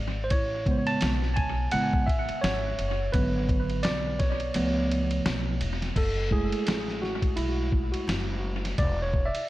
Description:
hip hop, jazz-hop; 85 BPM; 4/4; swing 58% on 16ths; F# minor; A4 = 441 Hz
upright bass; bass; 0.0-9.4 s; E1 to C#2; -31 LUFS; equal
tine electric piano; accompaniment; 0.2-9.5 s; C#3 to A5; -28 LUFS; right 2 dB; tape echo
lo-fi sampler-style drum kit; drums; 0.3-9.5 s; crash cymbal, hi-hat, kick drum, ride cymbal, snare drum; -29 LUFS; equal; tape echo
light reverb, digital ambience; echo-heavy mix; -24 LUFS; side -16 dB against mid
0.0-6.0 A section; 6.0-9.5 B section
tine electric piano solo 0.0-6.0, 6.0-9.5; kick muted 4.6-6.0
0.3 Amaj7; 3.1 G#m7b5; 4.6 C#7alt; 6.0 F#m9; 8.8 E7(no3)
| 0.32 1.02 1.73 2.43 | 3.14 3.85 4.55 5.26 | 5.96 6.67 7.38 8.08 | 8.79

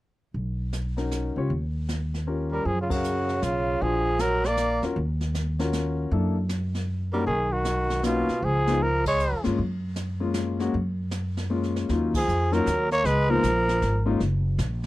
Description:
jazz, small-group swing and bop; 156 BPM; 3/4; swing 65% on 8ths; F# major; A4 = 438 Hz
upright bass; bass; 0.3-14.9 s; F#1 to G2; -27 LUFS; equal
jazz brush drum kit; drums; 0.3-14.9 s; brushed snare drum, crash cymbal, hi-hat, kick drum, ride cymbal, snare drum; -35 LUFS; right 1 dB
warm concert grand piano; accompaniment; 1.0-14.2 s; F#3 to E#5; -28 LUFS; left 4 dB
growling trumpet; melody; 2.5-4.8, 7.1-9.4, 12.2-14.1 s; E#4 to D5; -25 LUFS; equal
breathy tenor saxophone; second line; 2.5-4.8, 7.1-9.4, 12.2-14.1 s; B2 to A#3; -29 LUFS; right 3 dB
little or no reverb; -23 LUFS; side -17 dB against mid
0.4-2.7 A section; 2.7-11.9 B section; 11.9-14.9 C section
band accent 2.9, 9.0, 12.1
0.4 Bmaj7; 1.5 D#7; 2.7 F#maj9; 3.8 A#7b13; 5.0 D#m7; 6.1 F#7alt; 7.3 Bmaj7; 8.4 C#; 9.6 F#maj9; 11.9 D#m9; 13.1 C#13; 14.2 F#
| 0.35 0.74 1.12 | 1.51 1.89 2.28 | 2.66 3.05 3.43 | 3.81 4.20 4.58 | 4.97 5.35 5.74 | 6.12 6.51 6.89 | 7.28 7.66 8.05 | 8.43 8.82 9.20 | 9.59 9.97 10.36 | 10.74 11.13 11.51 | 11.90 12.28 12.67 | 13.05 13.44 13.82 | 14.20 14.59

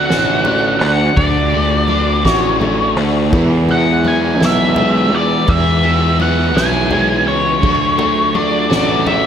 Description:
psychedelic rock; 56 BPM (dotted quarters); 6/8; straight; E mixolydian; A4 = 440 Hz
octave-fuzz lead guitar; melody; 0.0-9.3 s; C#5 to G#5; -17 LUFS; equal; wah, distortion, analog delay
mellow tonewheel organ; sustained chords; 0.0-9.3 s; F#3 to D5; -24 LUFS; right 4 dB; slow rotary speaker
overdriven semi-hollow guitar; riff; 0.0-9.3 s; D3 to F#4; -19 LUFS; left 1 dB; phaser, analog delay
fuzz fingered electric bass; bass; 0.0-9.3 s; A1 to E2; -17 LUFS; equal; overdrive
soft-mallet drum kit; drums; 0.1-9.2 s; crash cymbal, kick drum, ride cymbal, snare drum; -20 LUFS; left 1 dB; analog delay
congas; percussion; 0.1-9.2 s; -26 LUFS; left 4 dB
small room ambience; echo-heavy mix; -12 LUFS; side -8 dB against mid
0.0-9.3 A section
0.0 D; 3.3 E; 7.6 D
0.10 | 1.18 2.25 | 3.33 4.40 | 5.48 6.55 | 7.63 8.70

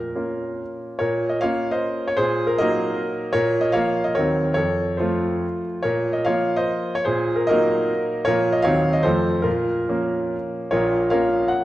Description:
classical, romantic triple-time dance for piano with dotted rhythms; 130-168 BPM; 3/4; rubato; Bb minor; A4 = 440 Hz
bright concert grand piano; solo; 0.0-11.6 s; Bb1 to Gb5; -19 LUFS; equal
wet recital hall reverb, RT60 1.7 s; dark, warm production; -19 LUFS; side -15 dB against mid
0.0-1.0 A section; 1.0-10.7 A section
0.0 Bbm; 2.2 Ebm/Bb; 3.3 Bbm; 4.2 Cdim/Eb; 4.6 F; 5.8 Bbm; 7.1 Ebm/Bb; 8.3 Bbm; 8.7 Cdim/Eb; 9.1 F; 9.5 Bbm
0.17 0.61 | 1.02 1.43 1.83 | 2.19 2.60 2.99 | 3.35 3.74 4.15 | 4.56 4.99 5.44 | 5.85 6.27 6.68 | 7.05 7.48 7.90 | 8.28 8.66 9.06 | 9.46 9.90 10.34 | 10.74 11.12 11.51

